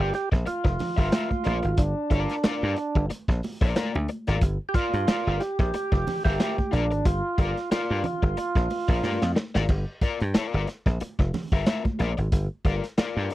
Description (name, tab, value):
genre	funk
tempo	91 BPM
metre	4/4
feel	swing 56% on 16ths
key	G dorian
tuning	A4 = 440 Hz
part	percussive tonewheel organ	melody	0.0-9.3 s	D4 to G4	-28 LUFS	right 3 dB	slow rotary speaker
part	overdriven electric guitar	accompaniment	0.0-13.3 s	F4 to E5	-30 LUFS	left 6 dB	harmonic tremolo
part	dry thumbed slap bass	bass	0.0-13.3 s	F1 to G2	-26 LUFS	equal	none
part	crunchy breakbeat drum kit	drums	0.1-13.3 s	crash cymbal, hi-hat, kick drum, snare drum	-25 LUFS	equal	none
part	congas	percussion	0.5-13.2 s	none	-34 LUFS	right 2 dB	none
room	little or no reverb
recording	dry, close 1970s-style studio recording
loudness	-23 LUFS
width	side -16 dB against mid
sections	0.0-13.3 A section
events	drum fill 9.0-9.7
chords	0.0 Gm7